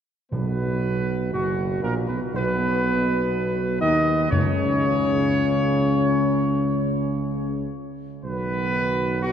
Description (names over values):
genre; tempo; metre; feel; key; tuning
classical; 61 BPM; 4/4; straight; B major; A4 = 444 Hz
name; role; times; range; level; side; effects
warm trumpet section; melody; 0.3-9.3 s; F#4 to D#5; -26 LUFS; right 1 dB; none
clear trombone section; sustained chords; 0.3-9.3 s; F#2 to F#3; -30 LUFS; right 3 dB; none
mellow French horn section; sustained chords; 0.3-9.3 s; F#3 to F#4; -26 LUFS; left 6 dB; none
mellow tuba; bass; 0.3-9.3 s; F#1 to D#2; -25 LUFS; right 3 dB; none
timpani; percussion; 0.3-5.8 s; F#2 to B2; -29 LUFS; left 2 dB; none
room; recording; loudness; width
wet cathedral reverb, RT60 5.0 s; dark, warm production; -20 LUFS; side -8 dB against mid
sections
0.3-9.3 A section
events
none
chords
0.3 B; 4.3 N.C.; 8.3 B